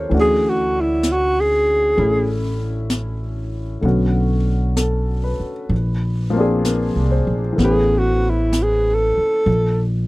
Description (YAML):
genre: jazz ballad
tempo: 64 BPM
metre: 4/4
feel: swing 69% on 8ths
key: A major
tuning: A4 = 440 Hz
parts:
  - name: warm upright piano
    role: accompaniment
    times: 0.0-9.5 s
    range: D3 to C#5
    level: -23 LUFS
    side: left 2 dB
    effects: none
  - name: upright bass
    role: bass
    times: 0.0-10.1 s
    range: A1 to D2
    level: -20 LUFS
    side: equal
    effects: none
  - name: jazz brush drum kit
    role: drums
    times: 0.1-10.1 s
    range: brushed snare drum, hi-hat, snare drum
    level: -25 LUFS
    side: left 1 dB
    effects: none
  - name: breathy alto saxophone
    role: melody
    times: 0.2-9.8 s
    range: E4 to A4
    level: -17 LUFS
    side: equal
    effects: none
room: little or no reverb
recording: dry, close 1970s-style studio recording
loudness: -16 LUFS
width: side -20 dB against mid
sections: 0.0-10.1 A section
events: alto saxophone solo 0.0-10.1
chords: 0.1 Dmaj9; 3.8 Bm7; 5.7 Bb9; 7.6 Aadd9; 9.5 N.C.